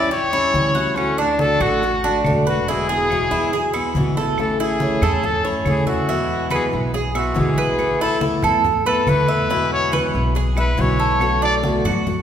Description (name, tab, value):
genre	latin, Cuban son and guajira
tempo	141 BPM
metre	4/4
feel	straight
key	A major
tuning	A4 = 438 Hz
part	bright trumpet	melody	0.0-11.6 s	C#4 to D5	-22 LUFS	left 2 dB	none
part	picked steel-string acoustic guitar	accompaniment	0.0-12.1 s	B2 to F#4	-24 LUFS	left 1 dB	none
part	Cuban tres	arpeggios	0.0-12.2 s	D4 to E5	-22 LUFS	right 2 dB	none
part	upright bass	bass	0.0-12.2 s	E1 to F#2	-26 LUFS	equal	none
part	congas	percussion	0.1-12.2 s	none	-25 LUFS	equal	none
part	claves	percussion	0.3-12.1 s	none	-34 LUFS	right 2 dB	none
room	wet recital hall reverb, RT60 1.7 s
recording	recorded in a church or concert hall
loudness	-16 LUFS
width	side -9 dB against mid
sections	0.0-4.4 A section; 4.4-12.2 B section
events	trumpet solo 4.4-12.2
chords	0.0 A7 (rootless); 1.0 D; 2.7 E; 4.4 A; 6.1 E; 7.8 Asus2; 9.5 E; 11.2 Bm7